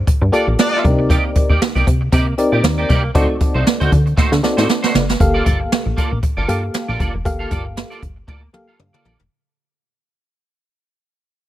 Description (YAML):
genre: early-eighties boogie funk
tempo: 117 BPM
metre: 4/4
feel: swing 56% on 16ths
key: G minor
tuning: A4 = 440 Hz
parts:
  - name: plucky analog bass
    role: bass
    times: 0.0-9.3 s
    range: F1 to D3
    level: -18 LUFS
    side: equal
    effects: none
  - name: clean electric guitar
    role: riff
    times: 0.1-9.2 s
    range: A3 to F5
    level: -23 LUFS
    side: right 3 dB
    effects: ensemble chorus
  - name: jazz brush drum kit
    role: drums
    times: 0.1-9.3 s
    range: hi-hat, kick drum, snare drum, toms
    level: -17 LUFS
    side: right 1 dB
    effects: none
  - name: warm horn section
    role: second line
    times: 0.3-0.8 s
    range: D4 to D5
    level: -22 LUFS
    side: left 2 dB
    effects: none
  - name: FM electric piano with tremolo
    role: accompaniment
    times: 0.3-9.1 s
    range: Bb3 to F5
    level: -20 LUFS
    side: left 2 dB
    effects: none
room: small room ambience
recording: none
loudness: -14 LUFS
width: side -13 dB against mid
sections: 0.0-5.2 A section; 5.2-9.3 B section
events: drum fill 4.2-5.2, 8.3-9.3; fade-out 5.2-9.3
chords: 0.0 Gm9; 0.8 Cm9; 3.2 D7b9; 5.2 Gm9